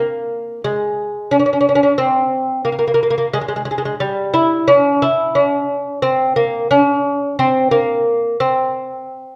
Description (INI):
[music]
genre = persian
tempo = 89 BPM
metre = 4/4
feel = straight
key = C dastgah homayun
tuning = A4 = 440 Hz
[part]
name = lute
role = solo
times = 0.0-9.4 s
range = G3 to E4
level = -17 LUFS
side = equal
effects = none
[sound]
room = wet recital hall reverb, RT60 1.3 s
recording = dark, warm production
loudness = -17 LUFS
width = mono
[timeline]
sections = 0.0-9.4 A section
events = none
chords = none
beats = 0.65 1.32 | 2.00 2.67 3.35 4.02 | 4.69 5.37 6.04 6.71 | 7.38 8.06 8.73